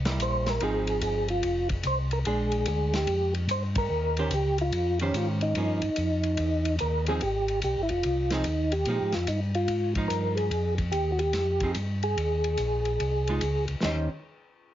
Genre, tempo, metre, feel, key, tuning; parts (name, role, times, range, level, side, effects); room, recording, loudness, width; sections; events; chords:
soul jazz organ trio; 145 BPM; 4/4; swing 66% on 8ths; A4 = 442 Hz
mellow tonewheel organ; bass; 0.0-14.1 s; F1 to Bb2; -29 LUFS; equal; chorus vibrato, slow rotary speaker
archtop guitar, miked and amplified; accompaniment; 0.1-14.1 s; Eb3 to C5; -32 LUFS; right 2 dB
warm soul drum kit; drums; 0.1-14.0 s; crash cymbal, hi-hat, kick drum, ride cymbal, snare drum; -35 LUFS; left 1 dB
percussive tonewheel organ; melody; 0.2-14.1 s; Db4 to C5; -28 LUFS; right 1 dB; slow rotary speaker, chorus vibrato
light reverb; heavily compressed radio sound, nothing above 7.5 kHz; -25 LUFS; side -12 dB against mid
0.0-7.2 A section; 7.2-13.8 B section
band accent 3.7
0.0 C7; 0.6 Fm7; 2.3 Bb6; 3.9 Eb13; 5.6 Gm7b5; 6.4 Caug; 7.2 Fm7; 8.9 Bb7sus4; 10.5 Fm7; 12.2 Bb7sus4; 13.8 Eb6